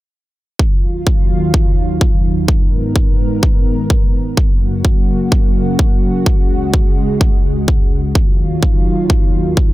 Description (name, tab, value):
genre	EDM, festival progressive house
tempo	127 BPM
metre	4/4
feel	straight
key	unclear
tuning	A4 = 441 Hz
part	lush unison pad	sustained chords	0.6-9.7 s	C#2 to A#4	-18 LUFS	equal	chorus, sidechain pumping
part	electronic kick drum	drums	0.6-9.7 s	none	-13 LUFS	equal	none
room	little or no reverb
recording	none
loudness	-12 LUFS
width	side -17 dB against mid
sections	0.6-9.7 A section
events	none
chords	0.6 D#madd9; 2.5 G#madd9; 4.4 F#; 6.3 C#sus4; 8.2 D#madd9